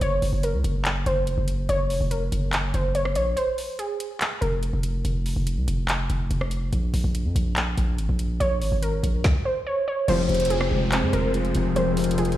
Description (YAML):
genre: hip hop, trap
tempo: 143 BPM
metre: 4/4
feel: half-time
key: F phrygian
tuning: A4 = 438 Hz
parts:
  - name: warbly dusty pluck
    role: melody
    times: 0.0-5.0, 8.4-12.4 s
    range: Ab4 to Db5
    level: -27 LUFS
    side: right 1 dB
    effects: chorus, low-pass filter
  - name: distorted 808-style bass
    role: bass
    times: 0.0-12.4 s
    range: F1 to F2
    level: -24 LUFS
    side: equal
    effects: distortion
  - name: trap drum kit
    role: drums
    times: 0.0-12.4 s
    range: crash cymbal, handclaps, hi-hat, kick drum, rim click, snare drum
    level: -28 LUFS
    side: equal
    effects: none
  - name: hollow clarinet-like synth lead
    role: second line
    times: 10.1-12.4 s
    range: Bb4 to C5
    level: -28 LUFS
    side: left 2 dB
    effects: chorus, phaser, ping-pong delay
  - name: dark baby grand piano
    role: accompaniment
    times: 10.1-12.4 s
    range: F2 to C4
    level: -25 LUFS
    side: left 1 dB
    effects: low-pass filter
  - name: warm analog pad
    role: sustained chords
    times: 10.1-12.4 s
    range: F3 to C5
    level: -30 LUFS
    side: left 4 dB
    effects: chorus
  - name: dark brass ensemble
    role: stabs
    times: 10.1-10.4 s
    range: C2 to F3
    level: -30 LUFS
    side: left 10 dB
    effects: none
  - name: downlifter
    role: sound effects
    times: 10.1-12.4 s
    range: none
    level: -35 LUFS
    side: equal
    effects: none
room: digital ambience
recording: played on a big sound system in a bare room, stone room reverb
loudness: -22 LUFS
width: side -13 dB against mid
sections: 0.0-10.1 A section; 10.1-12.4 B section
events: break 3.4-4.2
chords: 0.0 Gb; 3.4 N.C.; 6.7 Bbm; 10.1 Fm